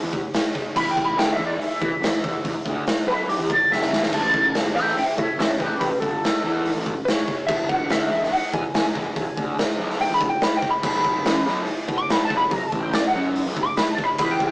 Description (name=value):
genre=blues rock power trio and southern rock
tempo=143 BPM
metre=4/4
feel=straight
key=unclear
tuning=A4 = 441 Hz
part: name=fuzz picked electric bass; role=bass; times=0.0-14.5 s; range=E1 to E3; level=-27 LUFS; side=equal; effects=overdrive
part: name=raw garage drum kit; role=drums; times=0.1-14.5 s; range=crash cymbal, hi-hat, kick drum, snare drum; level=-23 LUFS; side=equal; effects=none
part: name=lightly driven lead guitar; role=melody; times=0.8-14.5 s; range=G4 to D6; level=-22 LUFS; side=equal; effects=wah
room=light reverb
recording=rough rehearsal-room recording, warm saturation, small speaker sound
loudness=-19 LUFS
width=side -25 dB against mid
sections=0.0-14.5 A section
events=lead electric guitar solo 0.0-14.5; drum fill 3.7-4.1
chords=0.0 N.C.; 4.1 A7; 7.5 E7; 10.8 B5